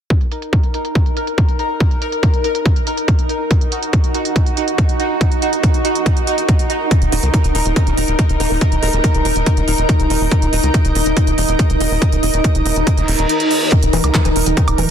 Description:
psychedelic trance; 141 BPM; 4/4; straight; Eb minor; A4 = 440 Hz
pulsing gated texture; sustained chords; 0.3-14.9 s; Eb4 to Eb5; -20 LUFS; right 1 dB; chorus, built-in reverb, sidechain pumping
electronic kick drum; drums; 0.1-14.7 s; -14 LUFS; equal
techno drum kit; drums; 0.1-14.9 s; handclaps, hi-hat, woodblock; -24 LUFS; right 3 dB; low-pass filter on hats, low-pass filter on perc, low-pass filter on snare, low-pass filter on room
granular cloud pad; texture; 2.1-14.9 s; Eb4 to Bb5; -22 LUFS; equal; built-in reverb, sidechain pumping
tight sequencer bass; bass; 7.0-14.9 s; Eb1 to Db2; -18 LUFS; equal
vowel-sweep wobble bass; second line; 7.1-9.0, 13.9-14.5 s; Ab3 to Eb4; -29 LUFS; right 2 dB
reverse cymbal; sound effects; 13.0-13.7 s; -23 LUFS; right 1 dB
liquid acid bass; riff; 13.7-14.9 s; Eb3 to Fb3; -22 LUFS; left 2 dB; chorus, auto-pan, sidechain pumping, tape echo
light reverb; dense, heavily limited modern master; -13 LUFS; side -9 dB against mid
0.1-13.7 A section; 13.7-14.9 B section
fade-in on ambient pad 0.1-13.7; reverse cymbal 13.0-13.7; kick drops out 13.3-13.7; filter sweep on acid bass 13.7-14.9
0.1 Eb5

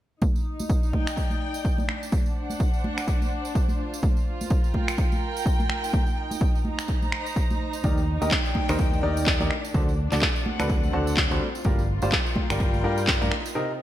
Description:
piano house; 126 BPM; 4/4; swing 58% on 16ths; Eb major; A4 = 440 Hz
electronic kick drum; drums; 0.2-13.2 s; -24 LUFS; equal
tambourine and congas; percussion; 0.2-13.5 s; -34 LUFS; right 2 dB
dark studio string section; texture; 0.2-13.6 s; C4 to Bb5; -32 LUFS; equal; sidechain pumping
electronic finger snaps and handclaps; drums; 1.1-13.4 s; -28 LUFS; equal; gated reverb
clear baby grand piano; riff; 7.8-13.7 s; C3 to Eb5; -28 LUFS; equal; sidechain pumping, digital delay
fingered electric bass; bass; 7.8-13.3 s; G1 to G2; -28 LUFS; equal; tube saturation, sidechain pumping, low-pass filter
light reverb, studio reverb; bright 1980s-style digital production; -22 LUFS; side -13 dB against mid
0.2-13.8 A section
0.2 Ebmaj7; 1.9 D7; 3.8 Gm7; 5.7 Cm7; 7.8 Ebmaj7; 9.5 D7; 11.4 Gm7; 13.3 Cm7

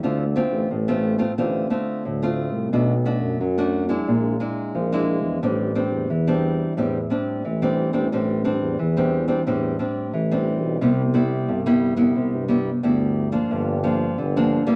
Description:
samba and choro; 89 BPM; 4/4; straight; A minor, C major from 10.8 s; A4 = 437 Hz
nylon-string guitar; accompaniment; 0.0-14.8 s; G2 to F#4; -24 LUFS; equal
mellow tuba; bass; 0.0-14.8 s; G1 to G2; -27 LUFS; equal
moderate studio reverb, RT60 0.7 s; -22 LUFS; mono
0.0-10.8 A section; 10.8-14.8 B section
0.0 Dm7; 2.7 Bm7; 4.1 Bb7#11; 5.4 Am11; 10.8 Cmaj7; 13.5 Gm7

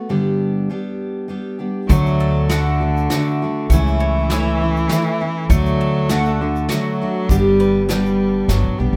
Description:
acoustic folk duo or small band; 100 BPM; 3/4; straight; D major; A4 = 439 Hz
picked steel-string acoustic guitar; accompaniment; 0.0-9.0 s; G2 to G4; -22 LUFS; equal
rich cello; second line; 1.9-9.0 s; D3 to A3; -24 LUFS; equal
bowl-back mandolin; arpeggios; 1.9-9.0 s; A3 to G5; -30 LUFS; equal
upright bass; bass; 1.9-9.0 s; G1 to D2; -22 LUFS; equal
soft brush drum kit; drums; 1.9-8.6 s; hi-hat, kick drum, snare drum; -24 LUFS; equal
tube shaker; percussion; 1.9-8.6 s; -37 LUFS; equal
little or no reverb; -18 LUFS; mono
0.0-1.9 A section; 1.9-9.0 B section
0.1 G; 1.9 D; 3.7 A/C#; 5.5 D; 7.3 G

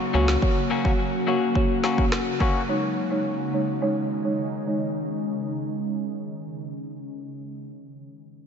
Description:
dancehall; 106 BPM; 4/4; straight; A4 = 440 Hz
buzzing marimba with soft mallets; accompaniment; 0.0-4.9 s; Ab3 to Db5; -27 LUFS; right 1 dB; low-pass filter
ethereal airy pad; sustained chords; 0.0-7.2 s; Db3 to Gb4; -28 LUFS; equal; ensemble chorus, built-in reverb, phaser, sidechain pumping, low-pass filter
electric guitar at the edge of break-up; arpeggios; 0.1-2.6 s; Gb3 to Gb4; -29 LUFS; left 5 dB; low-pass filter, diffuse ambient delay
afro-pop drum kit; drums; 0.3-2.5 s; kick drum, rim click, snare drum; -26 LUFS; equal
moderate huge ambient reverb, RT60 4.9 s; dreamy mix soaked in reverb, nothing above 7.7 kHz; -22 LUFS; side -7 dB against mid
0.0-7.2 A section
filter sweep 0.0-7.2
0.0 Gb; 2.7 Dbsus2

